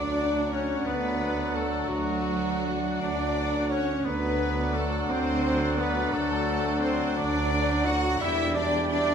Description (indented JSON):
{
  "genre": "classical, slow romantic movement for symphony orchestra",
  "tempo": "58 BPM (dotted quarters)",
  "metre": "12/8",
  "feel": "rubato",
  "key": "unclear",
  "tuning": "A4 = 440 Hz",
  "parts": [
    { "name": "rich studio violin section", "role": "melody", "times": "0.0-9.1 s", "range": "F#4 to F#5", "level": "-36 LUFS", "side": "left 3 dB", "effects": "none" },
    { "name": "bright concert flute", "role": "second line", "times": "0.0-9.1 s", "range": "F#4 to F#5", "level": "-34 LUFS", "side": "left 3 dB", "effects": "none" },
    { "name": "dark clarinet", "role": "second line", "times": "0.0-9.1 s", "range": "D5", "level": "-38 LUFS", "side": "left 2 dB", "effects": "none" },
    { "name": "mellow cor anglais", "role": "second line", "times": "0.0-9.1 s", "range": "F#3 to F#4", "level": "-36 LUFS", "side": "right 4 dB", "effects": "none" },
    { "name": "rich studio violin section", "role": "second line", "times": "0.0-9.1 s", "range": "F#4 to F#5", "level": "-36 LUFS", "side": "left 3 dB", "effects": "none" },
    { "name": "warm bassoon", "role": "accompaniment", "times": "0.0-9.1 s", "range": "F#3 to G3", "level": "-36 LUFS", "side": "right 2 dB", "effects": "none" },
    { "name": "warm studio viola section", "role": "accompaniment", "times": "0.0-9.1 s", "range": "D5 to G5", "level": "-37 LUFS", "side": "equal", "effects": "none" },
    { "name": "mellow French horn section", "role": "sustained chords", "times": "0.0-9.1 s", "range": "G3 to D4", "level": "-32 LUFS", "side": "left 4 dB", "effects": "none" },
    { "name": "clear trumpet section", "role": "stabs", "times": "0.0-9.1 s", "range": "E5 to F#5", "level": "-36 LUFS", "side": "right 3 dB", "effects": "none" },
    { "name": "clear tuba", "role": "bass", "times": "0.0-9.1 s", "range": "E1 to D2", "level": "-34 LUFS", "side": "right 4 dB", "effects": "none" },
    { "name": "rich studio cello section", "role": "bass", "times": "0.0-9.1 s", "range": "F#3 to F#4", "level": "-32 LUFS", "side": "right 3 dB", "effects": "none" },
    { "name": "warm studio double bass section", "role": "bass", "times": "0.0-9.1 s", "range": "D2 to E2", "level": "-33 LUFS", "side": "right 2 dB", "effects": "none" }
  ],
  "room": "wet recital hall reverb, RT60 1.3 s",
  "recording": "none",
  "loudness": "-24 LUFS",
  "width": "side -7 dB against mid",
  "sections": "0.0-9.1 A section",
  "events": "none",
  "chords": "0.0 D; 4.1 D7; 8.2 Em7",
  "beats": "0.85 1.89 3.00 | 4.07 5.11 6.13 7.17 | 8.21"
}